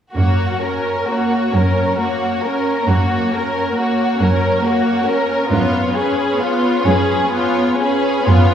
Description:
classical, slow romantic movement for string orchestra; 42-47 BPM (dotted quarters); 12/8; rubato; F# major; A4 = 440 Hz
rich studio violin section; second line; 0.1-8.5 s; E#4 to A#4; -20 LUFS; left 1 dB
clear studio cello section; bass; 0.1-8.5 s; F#2; -18 LUFS; right 1 dB
rich studio violin section; melody; 0.2-8.5 s; A#4 to C#5; -24 LUFS; left 3 dB
rich studio viola section; accompaniment; 0.2-8.5 s; A#3 to C#4; -19 LUFS; right 1 dB
wet scoring stage reverb, RT60 2.0 s; heard from further back in the room; -14 LUFS; side -9 dB against mid
0.1-8.5 A section
0.1 F#; 5.5 C#7/F#

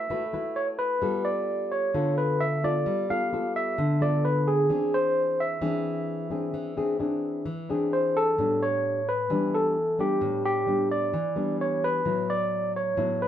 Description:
bossa nova; 130 BPM; 4/4; straight; A4 = 440 Hz
tine electric piano; melody; 0.0-13.3 s; G4 to F5; -26 LUFS; right 1 dB; medium tremolo
nylon-string guitar; accompaniment; 0.0-13.3 s; A2 to B4; -28 LUFS; left 2 dB
wet studio reverb, RT60 0.6 s; band playing live in one room; -24 LUFS; side -10 dB against mid
0.0-13.3 A section
0.0 D69/A (rootless); 1.0 G9; 4.7 Eaug7; 8.4 A9sus4; 12.1 D69/A

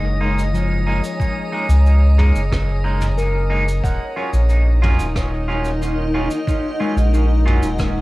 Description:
ambient dub; 91 BPM; 4/4; straight; Eb minor; A4 = 440 Hz
granular cloud pad; sustained chords; 0.0-8.0 s; Eb4 to Bb5; -27 LUFS; equal; built-in reverb, cassette tape, plate reverb
handpan; arpeggios; 0.0-8.0 s; F3 to Gb5; -28 LUFS; left 4 dB; cassette tape, dub echo, plate reverb
round analog bass; bass; 0.0-8.0 s; Eb1 to Db2; -16 LUFS; equal
drifting glass-harmonics texture; texture; 0.0-8.0 s; Eb5; -32 LUFS; right 1 dB; chorus, built-in reverb, cassette tape, plate reverb
clean electric guitar; stabs; 0.2-7.7 s; Gb3 to F4; -26 LUFS; right 2 dB; cassette tape, dub echo, plate reverb
soft brush drum kit; drums; 0.4-7.9 s; rim click, shaker, toms; -30 LUFS; equal; cassette tape, dub echo
electronic kick drum; drums; 1.2-7.9 s; -22 LUFS; equal; cassette tape
light reverb; home recording on cassette; -15 LUFS; side -19 dB against mid
0.0-8.0 A section
0.0 Gb6; 3.8 Ebm7

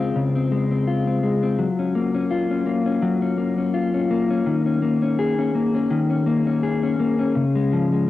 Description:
indie pop; 83 BPM; 4/4; swing 55% on 16ths; A4 = 437 Hz
mellow electric guitar; solo; 0.0-8.1 s; Db3 to Ab4; -19 LUFS; left 2 dB; lush chorus, vibrato effect, cassette tape, analog delay
light reverb; home recording on cassette; -19 LUFS; side -14 dB against mid
0.0-8.1 A section
0.0 Dbmaj7; 1.6 Gbmaj7; 4.5 Eb7sus4; 7.4 Db

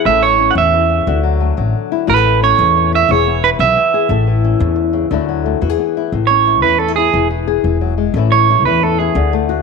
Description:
highlife guitar band; 119 BPM (dotted quarters); 12/8; straight; A major; A4 = 440 Hz
electric guitar at the edge of break-up; melody; 0.0-9.3 s; G#4 to F#5; -13 LUFS; right 10 dB
flamenco guitar; accompaniment; 0.0-9.6 s; A2 to A4; -17 LUFS; left 12 dB
upright bass; bass; 0.1-9.6 s; E1 to E2; -17 LUFS; left 1 dB
light reverb, small room reverb; 1960s-style stereo with parts hard left and right; -11 LUFS; side -4 dB against mid
0.0-6.1 A section; 6.1-9.6 B section
clean electric guitar solo 6.1-9.6
0.1 A; 1.1 Dadd9; 2.1 A; 3.1 E; 4.1 A; 5.1 Dadd9; 5.6 E; 6.1 A; 7.1 E; 8.1 A

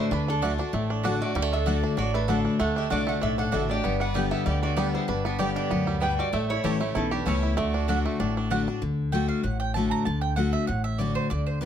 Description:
bluegrass; 193 BPM; 4/4; swing 53% on 8ths; D major; A4 = 436 Hz
lap resonator guitar; melody; 0.0-8.5 s; A4 to G5; -31 LUFS; right 3 dB; tape echo
clear fiddle; second line; 0.0-8.5 s; C#4 to B4; -36 LUFS; left 3 dB
picked steel-string acoustic guitar; accompaniment; 0.0-11.7 s; E2 to G4; -28 LUFS; left 4 dB
bluegrass banjo; arpeggios; 0.0-8.8 s; G3 to G4; -31 LUFS; right 5 dB
upright bass; bass; 0.1-11.7 s; G1 to D2; -29 LUFS; equal
mandolin; stabs; 0.4-11.7 s; A3 to Bb5; -31 LUFS; right 7 dB
little or no reverb; close, detailed microphones; -23 LUFS; side -9 dB against mid
0.0-8.8 A section; 8.8-11.7 B section
mandolin solo 8.8-11.7
0.0 D; 3.8 G; 6.3 A; 7.6 D

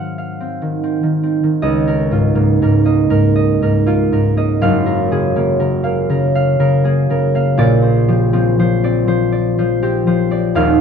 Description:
classical, solo harp piece; 80 BPM; 4/4; rubato; Db major; A4 = 439 Hz
concert harp; solo; 0.0-10.8 s; Eb1 to F6; -13 LUFS; equal
moderate studio reverb, RT60 0.7 s; dark, warm production; -13 LUFS; side -6 dB against mid
0.0-1.6 A section; 1.6-10.8 B section
0.0 Ab6; 1.6 Db69; 4.6 Gbmaj9; 7.6 Bb69

